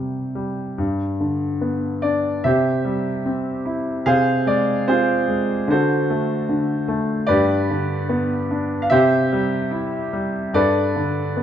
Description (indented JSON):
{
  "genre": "classical, lyrical solo piano",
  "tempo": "74 BPM",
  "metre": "4/4",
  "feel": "rubato",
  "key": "C major",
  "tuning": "A4 = 438 Hz",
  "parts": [
    { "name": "clear concert grand piano", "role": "solo", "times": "0.0-11.4 s", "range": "G2 to F5", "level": "-18 LUFS", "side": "equal", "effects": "none" }
  ],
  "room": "moderate concert hall reverb, RT60 2.0 s",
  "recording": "dark, warm production",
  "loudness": "-18 LUFS",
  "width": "side -9 dB against mid",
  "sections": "0.8-11.4 A section",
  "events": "none",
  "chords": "0.0 C; 0.8 G; 2.5 C; 4.1 Fm/C; 5.7 D7; 7.3 G; 8.9 C; 10.5 Gadd9"
}